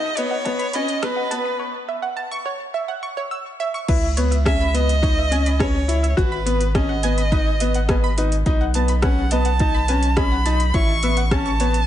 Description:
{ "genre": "piano and strings electronica", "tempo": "105 BPM", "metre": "4/4", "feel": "straight", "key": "C# minor", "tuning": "A4 = 442 Hz", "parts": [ { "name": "rich violin", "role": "melody", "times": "0.0-11.9 s", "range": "B4 to C#6", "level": "-25 LUFS", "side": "right 1 dB", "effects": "ping-pong delay" }, { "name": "clear concert grand piano", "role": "riff", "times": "0.0-11.8 s", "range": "B3 to F#4", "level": "-24 LUFS", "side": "left 2 dB", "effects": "ping-pong delay" }, { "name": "analog pluck", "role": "arpeggios", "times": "0.2-11.7 s", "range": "B4 to E6", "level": "-28 LUFS", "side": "right 3 dB", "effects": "chorus, sidechain pumping, ping-pong delay" }, { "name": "deep house drum kit", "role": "drums", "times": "0.2-11.9 s", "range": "crash cymbal, hi-hat, rim click", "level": "-28 LUFS", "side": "equal", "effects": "overdrive, high-pass filter on hats, high-pass filter on snare, high-pass filter on cymbals" }, { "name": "electronic kick drum", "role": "drums", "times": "0.5-11.4 s", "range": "none", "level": "-21 LUFS", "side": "equal", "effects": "overdrive" }, { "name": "round analog bass", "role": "bass", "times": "3.9-11.9 s", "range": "G#1 to C#2", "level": "-20 LUFS", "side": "equal", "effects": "sidechain pumping" } ], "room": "light reverb, digital ambience", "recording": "high-pass filter, nothing above 10.5 kHz", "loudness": "-18 LUFS", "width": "side -12 dB against mid", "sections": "0.0-3.9 A section; 3.9-11.9 B section", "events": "build-up 0.0-3.9; break 1.6-3.9; drop 3.9-11.9", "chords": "0.0 B; 1.6 F#7(no3); 3.9 C#m7; 6.2 G#m7; 8.5 B7; 10.7 F#m7/A (rootless)" }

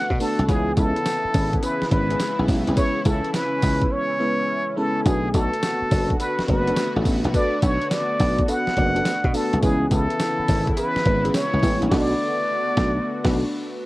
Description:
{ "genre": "R&B, new jack swing", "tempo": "105 BPM", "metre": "4/4", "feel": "swing 67% on 16ths", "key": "B dorian", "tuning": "A4 = 440 Hz", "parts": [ { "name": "trumpet with plunger mute", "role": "melody", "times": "0.0-13.6 s", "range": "G#4 to F#5", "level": "-24 LUFS", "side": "equal", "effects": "cassette tape" }, { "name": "FM electric piano with soft pad layer", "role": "accompaniment", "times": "0.0-13.9 s", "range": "E3 to D5", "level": "-27 LUFS", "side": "equal", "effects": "chorus, cassette tape" }, { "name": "sweeping resonant pad", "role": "sustained chords", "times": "0.0-13.9 s", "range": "C#3 to F#4", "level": "-32 LUFS", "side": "left 1 dB", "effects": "chorus, cassette tape" }, { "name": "dry thumbed slap bass", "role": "bass", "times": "0.1-13.4 s", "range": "F#1 to B2", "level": "-23 LUFS", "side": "equal", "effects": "none" }, { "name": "boom bap sampler-style drum kit", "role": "drums", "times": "0.1-13.4 s", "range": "crash cymbal, hi-hat, kick drum, snare drum, tambourine", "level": "-24 LUFS", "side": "equal", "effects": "cassette tape" }, { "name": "funky polysynth comp", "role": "stabs", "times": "0.5-13.4 s", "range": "C#4 to B4", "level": "-29 LUFS", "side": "left 1 dB", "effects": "chorus, cassette tape" } ], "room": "little or no reverb", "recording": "home recording on cassette", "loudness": "-19 LUFS", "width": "side -18 dB against mid", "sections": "0.0-13.9 A section", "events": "drums muted 3.9-5.1; band accent 11.9-13.9; break 13.1-13.9", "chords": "0.5 C#m7; 5.1 Bm7; 9.6 C#m7; 11.9 Bm7" }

